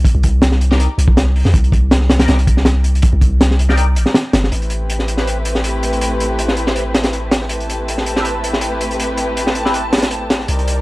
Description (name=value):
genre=drum and bass, jungle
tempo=161 BPM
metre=4/4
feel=straight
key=A minor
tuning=A4 = 441 Hz
part: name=long sustained 808-style bass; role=bass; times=0.0-10.8 s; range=G1 to F2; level=-16 LUFS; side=equal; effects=none
part: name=crunchy breakbeat drum kit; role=drums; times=0.0-10.8 s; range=hi-hat, kick drum, snare drum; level=-15 LUFS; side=equal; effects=high-pass filter on kick, high-pass filter on hats, high-pass filter on snare, high-pass filter on room
part: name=band-passed chord stab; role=stabs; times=0.7-9.8 s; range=C4 to D5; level=-25 LUFS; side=left 2 dB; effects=phaser, ensemble chorus, dub echo
part: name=dark studio string section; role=sustained chords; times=4.5-10.8 s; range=A3 to D5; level=-21 LUFS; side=equal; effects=none
part: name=backwards swelling texture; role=texture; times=6.2-10.8 s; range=A5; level=-30 LUFS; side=right 3 dB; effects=built-in reverb
room=little or no reverb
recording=dry, gritty hardware recording, transformer saturation, vinyl crackle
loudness=-13 LUFS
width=side -20 dB against mid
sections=0.0-4.5 A section; 4.5-10.8 B section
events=break 3.8-4.5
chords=0.0 Cm7; 4.5 Am7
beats=| 0.05 0.42 0.80 1.17 | 1.54 1.92 2.29 2.66 | 3.03 3.40 3.78 4.15 | 4.52 4.90 5.27 5.64 | 6.01 6.39 6.76 7.13 | 7.50 7.88 8.25 8.62 | 8.99 9.37 9.74 10.11 | 10.49